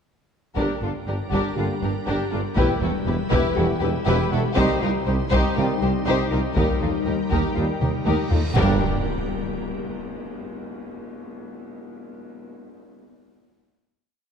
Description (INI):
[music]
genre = cinematic, hybrid orchestral and electronic film score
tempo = 120 BPM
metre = 4/4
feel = straight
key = G minor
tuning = A4 = 440 Hz
[part]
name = bright trombone section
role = sustained chords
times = 0.5-8.8 s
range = D3 to G3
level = -34 LUFS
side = right 2 dB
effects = none
[part]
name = soft additive organ-like pad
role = sustained chords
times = 1.1-8.8 s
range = G3 to C5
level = -29 LUFS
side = left 4 dB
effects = ensemble chorus, built-in reverb
[part]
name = warm studio violin section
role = melody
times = 0.6-8.8 s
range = A4 to C5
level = -30 LUFS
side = left 5 dB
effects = none
[part]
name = warm symphonic violin section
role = second line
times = 0.6-8.8 s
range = F4 to G4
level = -30 LUFS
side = left 4 dB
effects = none
[part]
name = warm symphonic viola section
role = accompaniment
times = 0.6-8.8 s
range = D4 to E4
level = -31 LUFS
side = equal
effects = none
[part]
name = mellow French horn section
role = sustained chords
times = 0.6-8.8 s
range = Bb3 to G4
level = -33 LUFS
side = left 3 dB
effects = none
[part]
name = rich symphonic cello section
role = bass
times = 0.6-8.8 s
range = C2 to G2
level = -28 LUFS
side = right 2 dB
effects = none
[part]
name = warm symphonic double bass section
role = bass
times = 0.6-8.8 s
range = E1 to Eb2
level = -28 LUFS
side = right 3 dB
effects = none
[part]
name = warm tuba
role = bass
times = 0.6-8.8 s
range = E1 to Eb2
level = -29 LUFS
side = right 4 dB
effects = none
[part]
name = taiko ensemble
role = drums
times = 0.6-8.7 s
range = none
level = -27 LUFS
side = left 1 dB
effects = none
[part]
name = reverse cymbal and impact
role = sound effects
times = 8.3-10.6 s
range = none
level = -31 LUFS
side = left 1 dB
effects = none
[sound]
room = moderate concert hall reverb, RT60 2.4 s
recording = dark, warm production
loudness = -20 LUFS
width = side -7 dB against mid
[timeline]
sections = 0.6-8.6 theme; 8.6-10.6 final chord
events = drum fill 7.8-8.6; reverse cymbal 8.3; impact 8.6-10.6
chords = 0.6 Gm; 2.6 Em; 4.6 Cm; 6.6 Eb; 8.6 Gm